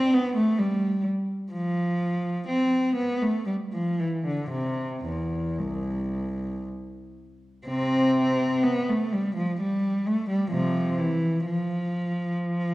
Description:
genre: classical, baroque-style suite movement for unaccompanied cello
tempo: 56-65 BPM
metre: 3/4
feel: rubato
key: C major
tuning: A4 = 440 Hz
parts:
  - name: rich cello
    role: solo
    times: 0.0-12.7 s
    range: C2 to C4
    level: -24 LUFS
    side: equal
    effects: none
room: wet recital hall reverb, RT60 1.6 s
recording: worn, warbling old tape, cassette tape, warbly pitch drift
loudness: -24 LUFS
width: side -18 dB against mid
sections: 0.0-7.7 A section; 7.7-12.7 B section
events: none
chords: none

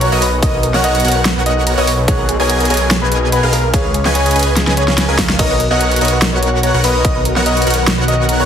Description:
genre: future bass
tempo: 145 BPM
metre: 4/4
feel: half-time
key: B lydian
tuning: A4 = 440 Hz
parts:
  - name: warm baby grand piano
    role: melody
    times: 0.0-8.5 s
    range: A#4 to D#5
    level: -20 LUFS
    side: left 1 dB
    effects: sidechain pumping, tape echo
  - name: airy dreamy lead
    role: arpeggios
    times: 0.0-8.5 s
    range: D#5 to G#5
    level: -23 LUFS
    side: equal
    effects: chorus, sidechain pumping, digital delay
  - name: soft round pluck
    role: arpeggios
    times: 0.0-8.4 s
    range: G#4 to C#6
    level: -25 LUFS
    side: right 2 dB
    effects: chorus, sidechain pumping, digital delay
  - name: supersaw chords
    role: riff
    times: 0.0-8.5 s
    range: B3 to G#5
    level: -18 LUFS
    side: equal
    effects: sidechain pumping
  - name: wide detuned saw bass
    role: bass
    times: 0.0-8.5 s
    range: B1 to C#2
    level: -17 LUFS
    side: equal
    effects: chorus, sidechain pumping
  - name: big-room dance drum kit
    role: drums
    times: 0.0-8.4 s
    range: crash cymbal, hi-hat, snare drum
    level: -18 LUFS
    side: equal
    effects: overdrive, small room reverb
  - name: electronic kick drum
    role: drums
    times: 0.4-7.1 s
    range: none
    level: -17 LUFS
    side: equal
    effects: overdrive, small room reverb
  - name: shimmering ambient pad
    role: sustained chords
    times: 6.7-8.5 s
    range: D#3 to A#4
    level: -25 LUFS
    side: equal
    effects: none
room: moderate digital room reverb, RT60 1.0 s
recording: heavily compressed radio sound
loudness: -11 LUFS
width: side -8 dB against mid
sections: 0.0-5.4 A section; 5.4-8.5 A section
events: drop 0.0-5.4, 5.4-8.5; drum fill 4.6-5.4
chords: 0.0 Bmaj7; 2.1 G#m9/B; 3.7 C#7; 5.4 Bmaj7

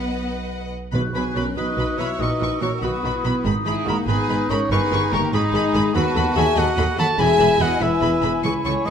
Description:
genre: quick classical-period movement for symphony orchestra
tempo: 96 BPM (dotted quarters)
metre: 6/8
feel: straight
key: B major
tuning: A4 = 441 Hz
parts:
  - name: warm studio violin section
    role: melody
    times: 0.0-8.9 s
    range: F#5 to C#6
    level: -30 LUFS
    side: left 3 dB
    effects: none
  - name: rich studio violin section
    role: second line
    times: 0.0-8.9 s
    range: D#4 to F#5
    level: -28 LUFS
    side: left 2 dB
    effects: none
  - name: rich studio viola section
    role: accompaniment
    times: 0.0-8.9 s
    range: D#3 to B4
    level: -30 LUFS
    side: right 1 dB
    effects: none
  - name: rich studio double bass section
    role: bass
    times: 0.0-8.9 s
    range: E1 to D#2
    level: -26 LUFS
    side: right 2 dB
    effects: none
  - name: warm studio cello section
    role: bass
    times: 0.0-8.9 s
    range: C#2 to B3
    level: -27 LUFS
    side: right 2 dB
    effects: none
  - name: bright clarinet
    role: second line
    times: 0.9-8.9 s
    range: D#4 to F#4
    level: -29 LUFS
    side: left 2 dB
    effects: none
  - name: mellow hollow flute section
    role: second line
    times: 0.9-8.9 s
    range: G#5 to F#6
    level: -29 LUFS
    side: left 4 dB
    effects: none
  - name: timpani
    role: percussion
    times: 0.9-1.5 s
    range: B2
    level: -29 LUFS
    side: right 1 dB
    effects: none
  - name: mellow cor anglais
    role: second line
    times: 1.1-8.9 s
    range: G#4 to A5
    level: -25 LUFS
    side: right 3 dB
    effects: none
  - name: mellow French horn section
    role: sustained chords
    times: 1.1-8.9 s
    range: G#3 to A4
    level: -25 LUFS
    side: left 5 dB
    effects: none
room: moderate scoring stage reverb, RT60 1.9 s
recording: none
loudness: -18 LUFS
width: side -8 dB against mid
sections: 0.9-8.9 A section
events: none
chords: 0.0 B; 2.2 F#7; 2.8 B; 3.5 G#m; 4.7 D#7/G; 5.3 G#m; 6.0 B7/D#; 7.2 E

